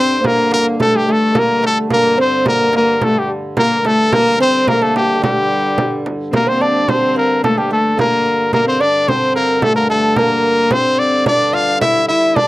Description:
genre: medieval dance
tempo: 109 BPM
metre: 2/4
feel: straight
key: G dorian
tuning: A4 = 440 Hz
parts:
  - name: brilliant trumpet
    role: melody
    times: 0.0-12.5 s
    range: G4 to F5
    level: -14 LUFS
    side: left 1 dB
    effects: none
  - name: lute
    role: second line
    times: 0.0-12.5 s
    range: G3 to F4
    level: -22 LUFS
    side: right 4 dB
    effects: none
  - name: rich viola da gamba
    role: second line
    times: 0.0-12.5 s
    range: G3 to E4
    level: -19 LUFS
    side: left 2 dB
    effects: none
  - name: hand-pumped harmonium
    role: drone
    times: 0.0-12.5 s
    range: G2 to D3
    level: -23 LUFS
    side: right 1 dB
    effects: none
  - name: frame drum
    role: percussion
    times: 0.2-12.5 s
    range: none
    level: -22 LUFS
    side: right 2 dB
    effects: none
room: moderate booth ambience, RT60 0.3 s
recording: none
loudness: -12 LUFS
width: side -17 dB against mid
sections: 0.0-6.3 A section; 6.3-12.5 B section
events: none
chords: none

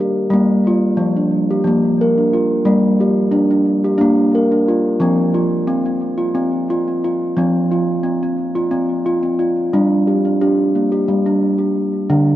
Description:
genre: world meditative, meditative tuned percussion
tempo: 178 BPM (eighths)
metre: 7/8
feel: straight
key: G minor pentatonic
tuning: A4 = 438 Hz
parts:
  - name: steel tongue drum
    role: solo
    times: 0.0-12.4 s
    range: D3 to Bb4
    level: -14 LUFS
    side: equal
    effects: tape echo
room: wet church reverb, RT60 3.0 s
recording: none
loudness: -14 LUFS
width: side -13 dB against mid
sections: 0.3-9.7 A section; 9.7-12.4 B section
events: none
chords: 0.3 Bb; 2.7 Gm; 5.0 F5; 9.7 G5

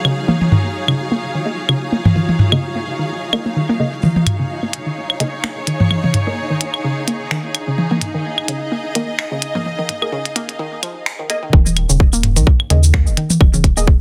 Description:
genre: minimal techno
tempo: 128 BPM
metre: 4/4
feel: swing 56% on 16ths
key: Eb minor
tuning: A4 = 440 Hz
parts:
  - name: hollow square pluck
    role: riff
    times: 0.0-13.8 s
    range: Db3 to Bb3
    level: -24 LUFS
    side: equal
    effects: chorus, sidechain pumping, tape echo
  - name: electronic claves and toms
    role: percussion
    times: 0.0-13.6 s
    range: none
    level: -18 LUFS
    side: equal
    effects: none
  - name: flickering grainy texture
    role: texture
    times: 0.0-11.5 s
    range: Gb3 to Gb4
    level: -34 LUFS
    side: equal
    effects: built-in reverb, sidechain pumping
  - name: rich symphonic string section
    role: texture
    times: 0.0-11.5 s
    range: Eb4 to F5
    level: -27 LUFS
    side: equal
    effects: sidechain pumping
  - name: minimal click drum kit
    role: drums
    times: 0.2-13.9 s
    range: cabasa, finger snaps, hi-hat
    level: -23 LUFS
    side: equal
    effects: low-pass filter on perc, low-pass filter on hats, soft clipping on snare, low-pass filter on snare
  - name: filtered dub chord stab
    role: stabs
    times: 1.5-13.8 s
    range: Bb3 to Eb5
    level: -28 LUFS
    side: equal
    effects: subtle chorus, tape echo
  - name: saturated sub bass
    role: bass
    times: 4.0-14.0 s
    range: Eb1 to Eb2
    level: -17 LUFS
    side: equal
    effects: tube saturation, sidechain pumping, high-pass filter
  - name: electronic kick drum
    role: drums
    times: 11.5-14.0 s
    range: none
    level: -13 LUFS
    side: equal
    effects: none
room: light reverb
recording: dense, heavily limited modern master, high-pass filter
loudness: -17 LUFS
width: mono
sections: 0.0-4.0 A section; 4.0-11.5 B section; 11.5-14.0 C section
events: build-up 4.0-11.5; filter sweep on synth arpeggio sound 4.0-11.5; filter sweep on synth stab 4.0-11.5; filter sweep 4.0-11.5; drop 11.5-14.0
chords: 0.0 Ebsus4; 11.5 N.C.

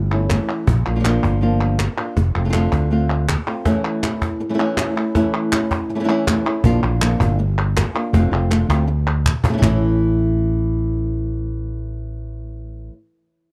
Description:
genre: flamenco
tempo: 161 BPM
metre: 4/4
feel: straight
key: A phrygian dominant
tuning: A4 = 439 Hz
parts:
  - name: fretless electric bass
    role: bass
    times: 0.0-3.4, 6.6-12.9 s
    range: F1 to D2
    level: -22 LUFS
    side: equal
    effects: none
  - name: flamenco guitar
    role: melody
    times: 0.1-12.9 s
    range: A2 to F4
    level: -23 LUFS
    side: equal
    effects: none
  - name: palmas hand claps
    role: percussion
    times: 0.1-9.7 s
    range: none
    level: -28 LUFS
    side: equal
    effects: none
  - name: cajon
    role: percussion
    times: 0.3-9.7 s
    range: none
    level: -24 LUFS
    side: equal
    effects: none
room: small room ambience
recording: dry, close 1970s-style studio recording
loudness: -19 LUFS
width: mono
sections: 0.0-3.7 A section; 3.7-9.6 A section; 9.6-12.6 B section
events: drum fill 8.5-9.6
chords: 0.0 A; 0.7 Bb; 2.2 F6; 3.7 A; 6.6 Bb; 8.1 F6; 9.6 A

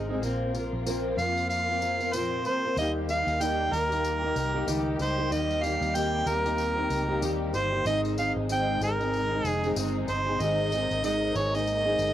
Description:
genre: acoustic pop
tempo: 94 BPM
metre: 4/4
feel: swing 60% on 16ths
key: Eb major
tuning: A4 = 440 Hz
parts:
  - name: fingerpicked plugged-in steel-string acoustic guitar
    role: accompaniment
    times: 0.0-12.1 s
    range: Ab2 to Bb4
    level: -30 LUFS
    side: equal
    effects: double-tracked left and right, cassette tape, plate reverb
  - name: warm studio string section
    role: sustained chords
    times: 0.0-12.1 s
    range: C3 to G4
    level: -38 LUFS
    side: left 1 dB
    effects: cassette tape
  - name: vintage muted fingered electric bass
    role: bass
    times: 0.0-12.1 s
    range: F1 to F2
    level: -33 LUFS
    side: equal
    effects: none
  - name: tambourine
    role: percussion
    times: 0.2-12.1 s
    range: none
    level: -41 LUFS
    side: left 6 dB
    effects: none
  - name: mellow harmonica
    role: melody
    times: 1.2-12.1 s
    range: Bb4 to G5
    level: -28 LUFS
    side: right 1 dB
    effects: cassette tape, plate reverb
room: moderate booth ambience, RT60 0.2 s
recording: home recording on cassette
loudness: -25 LUFS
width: side -12 dB against mid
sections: 0.0-2.8 A section; 2.8-12.1 B section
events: none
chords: 0.2 Bbsus2; 2.8 Eb; 7.9 Ab

